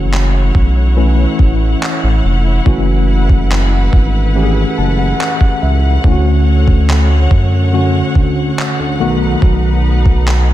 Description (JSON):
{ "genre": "contemporary R&B", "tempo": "71 BPM", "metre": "4/4", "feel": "straight", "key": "F# minor", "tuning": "A4 = 436 Hz", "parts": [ { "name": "tine electric piano", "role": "accompaniment", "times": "0.0-10.5 s", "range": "D3 to A5", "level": "-17 LUFS", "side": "left 1 dB", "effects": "overdrive, fast stereo tremolo" }, { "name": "warm studio string section", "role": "sustained chords", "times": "0.0-10.5 s", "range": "D3 to F#5", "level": "-22 LUFS", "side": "left 1 dB", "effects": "sidechain pumping" }, { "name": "smooth synth bass", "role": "bass", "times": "0.0-10.5 s", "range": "E#1 to F#2", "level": "-12 LUFS", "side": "equal", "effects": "none" }, { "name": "dusty soul sampler-style drum kit", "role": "drums", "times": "0.1-10.5 s", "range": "handclaps, kick drum", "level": "-14 LUFS", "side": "equal", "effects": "none" } ], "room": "light reverb", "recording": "none", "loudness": "-10 LUFS", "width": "side -14 dB against mid", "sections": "0.0-10.5 A section", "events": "break 0.0-10.5; tine electric piano fill 4.4-6.0", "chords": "0.0 F#m7; 6.0 Dmaj7; 9.0 B7" }